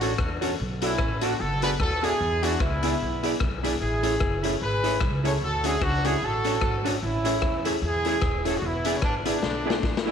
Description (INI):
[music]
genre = ska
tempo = 150 BPM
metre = 4/4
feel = swing 58% on 8ths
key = A major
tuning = A4 = 439 Hz
[part]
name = clear horn section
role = melody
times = 0.0-10.0 s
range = A3 to C#5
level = -28 LUFS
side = right 1 dB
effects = slapback echo
[part]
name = vintage hollow-body jazz guitar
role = accompaniment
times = 0.0-10.1 s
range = D4 to D5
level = -31 LUFS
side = right 12 dB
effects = none
[part]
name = bright upright piano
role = stabs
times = 0.0-10.1 s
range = A3 to A4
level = -32 LUFS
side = left 11 dB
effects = none
[part]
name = upright bass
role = bass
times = 0.0-10.1 s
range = D#1 to E2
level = -30 LUFS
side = equal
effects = none
[part]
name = raw garage drum kit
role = drums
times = 0.0-10.1 s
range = hi-hat, kick drum, rim click, snare drum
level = -29 LUFS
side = left 2 dB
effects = slapback echo
[sound]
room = light reverb, small room ambience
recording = 1960s-style stereo with parts hard left and right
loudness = -23 LUFS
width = side -8 dB against mid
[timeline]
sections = 0.0-10.1 A section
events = drum fill 9.4-10.1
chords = 0.0 Dmaj7; 0.6 Bm7; 2.2 E7; 3.8 Amaj7; 5.4 Dmaj7; 7.0 Amaj7; 8.6 E7